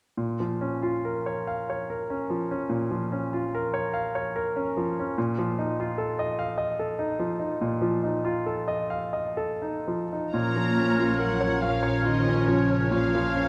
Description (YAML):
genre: classical, romantic movement for piano and orchestra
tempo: 39-51 BPM (dotted quarters)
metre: 12/8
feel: rubato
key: Bb minor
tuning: A4 = 439 Hz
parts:
  - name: bright concert grand piano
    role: melody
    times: 0.2-13.5 s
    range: Bb2 to F5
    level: -29 LUFS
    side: equal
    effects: none
  - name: warm symphonic violin section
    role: melody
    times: 10.3-13.5 s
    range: Db5 to Bb5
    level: -37 LUFS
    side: equal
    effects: none
  - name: clear clarinet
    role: second line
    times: 10.3-13.5 s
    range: F4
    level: -39 LUFS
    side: equal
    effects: none
  - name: clear oboe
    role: second line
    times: 10.3-13.5 s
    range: Db5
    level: -35 LUFS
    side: equal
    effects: none
  - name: mellow hollow small flute group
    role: second line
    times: 10.3-13.5 s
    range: F6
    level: -38 LUFS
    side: equal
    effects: none
  - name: warm symphonic violin section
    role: second line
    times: 10.3-13.5 s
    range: Bb4 to Db5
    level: -39 LUFS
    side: equal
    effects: none
  - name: rich symphonic viola section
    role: accompaniment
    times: 10.3-13.5 s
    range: F3 to F4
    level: -36 LUFS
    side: equal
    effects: none
  - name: warm French horn section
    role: sustained chords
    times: 10.3-13.5 s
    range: F3 to Db4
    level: -32 LUFS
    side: equal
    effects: none
  - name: rich symphonic cello section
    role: bass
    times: 10.3-13.5 s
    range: Db3 to Bb3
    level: -33 LUFS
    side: equal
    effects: none
  - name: warm studio double bass section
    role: bass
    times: 10.3-13.5 s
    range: Bb1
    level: -32 LUFS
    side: equal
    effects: none
room: moderate scoring stage reverb, RT60 1.4 s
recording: none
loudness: -27 LUFS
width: mono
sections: 0.2-10.3 A section; 10.3-13.5 B section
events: none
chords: 0.2 Bbm; 5.2 F7/Bb; 10.3 Bbm